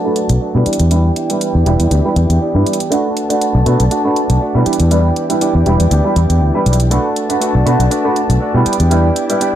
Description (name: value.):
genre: filtered disco house.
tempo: 120 BPM.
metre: 4/4.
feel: swing 54% on 16ths.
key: E minor.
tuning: A4 = 440 Hz.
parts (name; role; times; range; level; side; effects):
bright baby grand piano; accompaniment; 0.0-9.5 s; G3 to B4; -18 LUFS; right 2 dB; phaser, low-pass filter.
muted studio violin section; sustained chords; 0.0-9.6 s; D4 to A5; -21 LUFS; left 2 dB; vintage 12-bit sampler grit, low-pass filter.
direct-recorded clean electric guitar; riff; 0.0-9.6 s; E3 to G4; -20 LUFS; right 2 dB; low-pass filter.
electronic hi-hat; drums; 0.2-9.5 s; none; -24 LUFS; right 1 dB; overdrive.
fingered electric bass; bass; 0.3-9.1 s; E1 to B2; -12 LUFS; left 1 dB; tube saturation, low-pass filter.
room: light reverb, small room reverb.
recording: dark, warm production.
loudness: -11 LUFS.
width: side -11 dB against mid.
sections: 0.0-9.6 A section.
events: filter sweep 0.0-9.6.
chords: 0.0 Bm7; 0.7 Em7; 2.9 Bm7; 4.7 Em7; 6.9 Bm7; 8.7 Em7.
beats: 0.41 | 0.91 1.41 1.91 2.41 | 2.91 3.41 3.91 4.41 | 4.91 5.41 5.91 6.41 | 6.91 7.41 7.91 8.41 | 8.91 9.41.